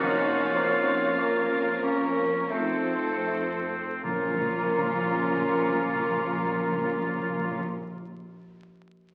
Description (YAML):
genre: classical, slow romantic movement for symphony orchestra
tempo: 37-54 BPM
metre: 3/4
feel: rubato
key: Bb minor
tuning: A4 = 440 Hz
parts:
  - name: warm studio violin section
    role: melody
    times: 0.0-7.6 s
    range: Bb4 to F5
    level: -41 LUFS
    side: equal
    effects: none
  - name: mellow silver concert flute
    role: second line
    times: 0.0-7.6 s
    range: A4 to Bb5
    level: -35 LUFS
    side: equal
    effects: none
  - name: rich studio violin section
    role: second line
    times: 0.0-7.6 s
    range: Bb3 to Bb4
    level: -36 LUFS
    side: equal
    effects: none
  - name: warm clarinet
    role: second line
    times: 0.0-7.6 s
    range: Db4 to Eb4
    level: -41 LUFS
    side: equal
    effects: none
  - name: warm oboe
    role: second line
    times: 0.0-7.6 s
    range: C4 to F4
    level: -33 LUFS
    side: equal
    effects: none
  - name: dark studio viola section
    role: accompaniment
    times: 0.0-7.6 s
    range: F3 to D#4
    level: -38 LUFS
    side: equal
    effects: none
  - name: warm bassoon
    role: accompaniment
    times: 0.0-7.6 s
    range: A3 to Bb3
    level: -36 LUFS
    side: equal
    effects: none
  - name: dark French horn section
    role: sustained chords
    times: 0.0-7.6 s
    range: C4 to F4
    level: -39 LUFS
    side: equal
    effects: none
  - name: mellow trombone section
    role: sustained chords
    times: 0.0-7.6 s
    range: F3 to Bb3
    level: -36 LUFS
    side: equal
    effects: none
  - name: rich studio cello section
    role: bass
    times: 0.0-7.6 s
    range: F2 to Bb2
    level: -44 LUFS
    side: equal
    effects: none
  - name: rich studio double bass section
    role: bass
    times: 0.0-7.6 s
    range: F1 to Bb1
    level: -48 LUFS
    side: equal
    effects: none
  - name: timpani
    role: percussion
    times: 0.0-7.7 s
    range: F2 to Bb2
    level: -37 LUFS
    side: equal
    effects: none
room: wet recital hall reverb, RT60 1.6 s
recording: very old 78 rpm record, vinyl crackle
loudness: -27 LUFS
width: mono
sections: 0.0-4.0 A section; 4.0-8.5 B section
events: slowing down 0.0-4.0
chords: 0.0 Bbm/F; 2.5 F7; 4.0 Bbm